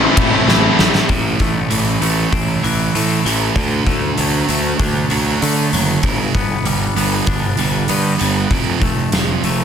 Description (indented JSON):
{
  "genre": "quiet-loud alternative rock",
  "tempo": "97 BPM",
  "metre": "4/4",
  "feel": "straight",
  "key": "A minor",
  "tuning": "A4 = 439 Hz",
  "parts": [
    { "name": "heavy high-gain guitar", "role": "riff", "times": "0.0-1.1 s", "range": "A2 to A3", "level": "-18 LUFS", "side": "equal", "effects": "distortion" },
    { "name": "high-gain distorted guitar", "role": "riff", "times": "0.0-1.1 s", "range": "A2 to E4", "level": "-18 LUFS", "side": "left 11 dB", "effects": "distortion" },
    { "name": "thick fuzz guitar", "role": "riff", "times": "0.0-9.6 s", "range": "F2 to E4", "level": "-19 LUFS", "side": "right 8 dB", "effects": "distortion" },
    { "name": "fuzz picked electric bass", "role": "bass", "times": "0.0-9.6 s", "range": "F1 to D3", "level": "-20 LUFS", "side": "left 1 dB", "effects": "overdrive" },
    { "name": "oversized low-tuned drum kit", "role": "drums", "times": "0.2-9.6 s", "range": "hi-hat, kick drum, ride cymbal, snare drum", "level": "-19 LUFS", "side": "equal", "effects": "none" },
    { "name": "twangy electric guitar", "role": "arpeggios", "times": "1.1-9.6 s", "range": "F2 to D4", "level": "-22 LUFS", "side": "left 10 dB", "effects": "none" }
  ],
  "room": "light reverb, small room reverb",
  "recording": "dense, heavily limited modern master",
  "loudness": "-14 LUFS",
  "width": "side -8 dB against mid",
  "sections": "0.0-1.1 A section; 1.1-9.6 B section",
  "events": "drum fill 0.5-1.1",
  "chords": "0.0 Am; 3.6 D; 6.0 G; 8.5 F"
}